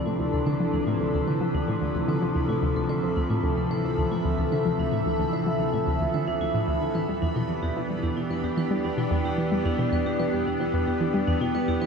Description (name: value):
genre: ambient, sequencer-driven space music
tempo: 111 BPM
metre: 4/4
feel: straight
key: unclear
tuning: A4 = 440 Hz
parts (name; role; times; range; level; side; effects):
- evolving wavetable pad; sustained chords; 0.0-11.9 s; C3 to E5; -25 LUFS; equal; chorus, built-in reverb, shimmer reverb
- vibraphone with hard mallets; arpeggios; 0.0-11.9 s; D4 to C5; -39 LUFS; moving between equal and right 7 dB; auto-pan, tape echo, shimmer reverb
- bubbling stepped-filter texture; texture; 0.0-11.9 s; B3 to B5; -42 LUFS; equal; chorus, built-in reverb, shimmer reverb
- analog pluck; riff; 0.1-11.9 s; D2 to G3; -28 LUFS; equal; chorus, tape echo
room: wet cathedral reverb, RT60 5.3 s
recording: in a vast, echoing space, cassette tape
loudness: -23 LUFS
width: side -6 dB against mid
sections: 0.0-11.9 A section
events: fade-in on vibraphone 0.0-11.9; fade-in on synth texture 0.0-11.9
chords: 0.0 Dm7; 7.0 Em7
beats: | 0.47 1.01 1.55 2.09 | 2.63 3.17 3.71 4.25 | 4.79 5.33 5.87 6.41 | 6.95 7.49 8.03 8.57 | 9.12 9.65 10.20 10.74 | 11.28 11.82